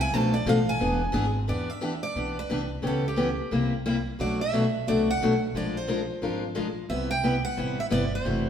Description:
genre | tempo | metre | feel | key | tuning
acoustic string swing (jazz manouche) | 177 BPM | 4/4 | swing 61% on 8ths | E minor | A4 = 442 Hz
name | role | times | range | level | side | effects
picked steel-string acoustic guitar | melody | 0.0-8.5 s | G4 to A5 | -31 LUFS | right 3 dB | none
upright bass | bass | 0.0-8.5 s | E1 to E2 | -33 LUFS | equal | none
picked steel-string acoustic guitar | accompaniment | 0.1-8.5 s | B2 to A#4 | -26 LUFS | left 2 dB | none
room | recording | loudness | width
wet stone room reverb, RT60 1.3 s | band playing live in one room | -24 LUFS | side -8 dB against mid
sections
0.0-1.5 A section; 1.5-8.5 B section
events
steel-string acoustic guitar solo 0.0-1.5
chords
0.1 Bm7b5; 0.8 E7; 1.5 Em7; 2.8 C#m7b5; 3.5 C7; 4.2 Bm7; 5.5 A#9; 6.9 Cmaj7

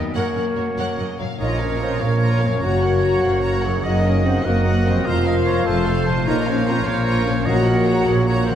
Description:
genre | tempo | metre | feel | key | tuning
cinematic, heroic adventure film score | 99 BPM (dotted quarters) | 6/8 | straight | Bb minor | A4 = 440 Hz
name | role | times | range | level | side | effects
clear oboe | second line | 0.0-8.6 s | C5 to Gb5 | -30 LUFS | right 2 dB | none
flute section | second line | 0.0-8.5 s | Bb4 to G5 | -32 LUFS | right 4 dB | none
warm symphonic violin section | second line | 0.0-8.6 s | Gb4 to F5 | -34 LUFS | left 2 dB | none
rich symphonic viola section | accompaniment | 0.0-8.6 s | F4 to C5 | -30 LUFS | left 1 dB | none
mellow French horn section | sustained chords | 0.0-8.5 s | Bb3 to Bb4 | -23 LUFS | left 2 dB | none
concert harp | arpeggios | 0.0-8.6 s | F2 to Bb4 | -29 LUFS | left 8 dB | none
bright symphonic double bass section | bass | 0.0-8.6 s | F1 to Gb2 | -23 LUFS | right 3 dB | none
dark symphonic cello section | bass | 0.0-8.6 s | F2 to Cb4 | -24 LUFS | right 1 dB | none
warm symphonic violin section | melody | 0.1-8.6 s | Db5 to Bb5 | -31 LUFS | left 2 dB | none
clear trombone section | sustained chords | 0.1-8.6 s | Db3 to Bb3 | -31 LUFS | right 3 dB | none
warm clarinet | second line | 0.2-8.4 s | Gb4 to Db5 | -32 LUFS | left 2 dB | none
clear trumpet | stabs | 1.4-8.4 s | C5 to Eb5 | -29 LUFS | right 1 dB | none
timpani | percussion | 7.5-8.0 s | Bb2 | -26 LUFS | equal | none
room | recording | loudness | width
wet scoring stage reverb, RT60 1.8 s | none | -17 LUFS | side -10 dB against mid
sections
0.0-1.4 A section; 1.4-8.6 B section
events
none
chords
0.2 Gb; 1.4 Bbm; 2.6 Gb; 3.8 Ebm/Gb; 5.1 Fsus4; 5.7 F; 6.3 Bbm; 7.5 Gb/Bb

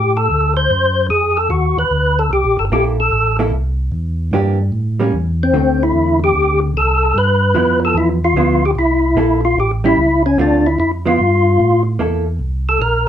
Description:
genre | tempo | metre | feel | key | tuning
jazz | 149 BPM | 4/4 | swing 66% on 8ths | C mixolydian | A4 = 440 Hz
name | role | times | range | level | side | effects
percussive tonewheel organ | melody | 0.0-13.1 s | C4 to C5 | -14 LUFS | left 1 dB | slow rotary speaker, overdrive, chorus vibrato
mellow tonewheel organ | bass | 0.0-13.1 s | G1 to A2 | -18 LUFS | equal | chorus vibrato, slow rotary speaker
vintage hollow-body jazz guitar | accompaniment | 2.7-12.2 s | D3 to A4 | -19 LUFS | right 2 dB | none
room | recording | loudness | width
wet small room reverb, RT60 0.5 s | band playing live in one room | -13 LUFS | side -10 dB against mid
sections
0.0-12.0 A section; 12.0-13.1 B section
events
tonewheel organ solo 12.0-13.1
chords
0.0 F69 (rootless); 0.7 D13b9; 2.3 C6; 3.9 Em7b5; 4.7 A7b9; 5.5 D5; 7.2 G6; 8.8 C6; 9.6 A7; 10.4 Dm7; 11.2 Gsus2; 12.0 C13

